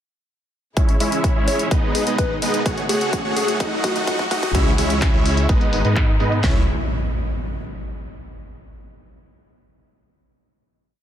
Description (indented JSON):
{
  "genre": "EDM, festival progressive house",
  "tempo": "127 BPM",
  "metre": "4/4",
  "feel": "straight",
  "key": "C# minor",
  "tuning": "A4 = 440 Hz",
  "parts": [
    { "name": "dark studio string section", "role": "sustained chords", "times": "0.8-6.7 s", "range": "B2 to G#4", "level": "-30 LUFS", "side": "left 1 dB", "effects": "sidechain pumping" },
    { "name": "supersaw chords", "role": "riff", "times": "0.8-6.6 s", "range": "G#3 to F#5", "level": "-23 LUFS", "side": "right 1 dB", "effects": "sidechain pumping, low-pass filter, digital delay" },
    { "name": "wide detuned saw bass", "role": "bass", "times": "0.8-6.7 s", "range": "F#1 to G#2", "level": "-25 LUFS", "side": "equal", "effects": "none" },
    { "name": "big-room dance drum kit", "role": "drums", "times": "0.8-6.5 s", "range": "handclaps, kick drum, snare drum", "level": "-20 LUFS", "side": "equal", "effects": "small room reverb" },
    { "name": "big-room dance drum kit", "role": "drums", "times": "0.8-6.4 s", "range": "handclaps, hi-hat", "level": "-29 LUFS", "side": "left 2 dB", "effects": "high-pass filter on hats, low-pass filter on hats, small room reverb, high-pass filter on snare, low-pass filter on snare" },
    { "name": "riser and impact", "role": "sound effects", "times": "2.3-8.3 s", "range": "none", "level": "-29 LUFS", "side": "equal", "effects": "none" },
    { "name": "soft struck synth lead", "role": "melody", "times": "1.5-4.6 s", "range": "F#4 to C#5", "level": "-28 LUFS", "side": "left 3 dB", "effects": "chorus, digital delay" }
  ],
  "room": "light reverb",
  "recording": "dense, heavily limited modern master, high-pass filter",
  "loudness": "-17 LUFS",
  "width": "side -10 dB against mid",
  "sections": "0.8-4.5 build; 4.5-6.4 outro; 6.4-8.3 final chord",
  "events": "build-up 0.8-4.5; filter sweep on supersaw synth 0.8-4.5, 4.5-6.4; filter sweep 0.8-4.5; riser 2.3-4.5; drum fill 2.7-4.5; filter sweep on detuned saw bass 4.5-6.4",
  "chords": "0.8 C#m; 1.7 G#m; 2.7 F#madd9; 3.6 D#dim; 4.5 C#m; 5.5 G#m; 6.4 C#m"
}